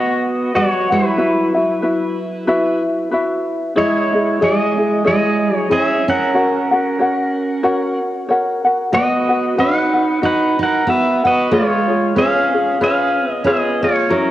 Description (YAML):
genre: Hawaiian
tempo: 93 BPM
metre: 4/4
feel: swing 57% on 8ths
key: unclear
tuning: A4 = 440 Hz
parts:
  - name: pedal steel guitar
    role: melody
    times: 0.0-14.3 s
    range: C#4 to F#5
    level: -18 LUFS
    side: equal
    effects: cassette tape
  - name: fingerpicked steel-string acoustic guitar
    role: second line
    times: 0.0-14.3 s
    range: F#3 to D#4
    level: -20 LUFS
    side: right 3 dB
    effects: cassette tape, tape echo
  - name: ukulele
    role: accompaniment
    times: 0.0-14.3 s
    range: E4 to F#5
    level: -18 LUFS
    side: left 1 dB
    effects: cassette tape
room: moderate lush hall reverb, RT60 2.4 s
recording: home recording on cassette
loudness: -14 LUFS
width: side -14 dB against mid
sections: 0.0-14.3 A section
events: none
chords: 0.0 B; 1.2 Esus2; 3.8 C#madd9; 6.4 F#; 8.9 B; 11.5 C#7